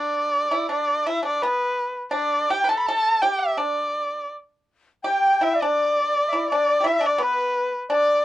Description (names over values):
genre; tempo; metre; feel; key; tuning
chinese traditional, Chinese chamber ensemble; 83 BPM; 2/4; rubato; D zhi mode; A4 = 441 Hz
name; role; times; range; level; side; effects
warm erhu; melody; 0.0-8.2 s; B4 to B5; -21 LUFS; right 1 dB; none
pipa; second line; 0.0-8.2 s; B3 to B4; -27 LUFS; equal; none
bright reedy dizi; second line; 5.0-8.2 s; B4 to G5; -23 LUFS; left 3 dB; none
room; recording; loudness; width
moderate booth ambience, RT60 0.2 s; worn, warbling old tape, cassette tape, warbly pitch drift; -20 LUFS; side -14 dB against mid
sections
0.0-8.2 A section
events
none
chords
none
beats
| 0.70 1.42 | 2.14 2.86 | 3.58 4.30 | 5.03 5.76 | 6.49 7.21 | 7.92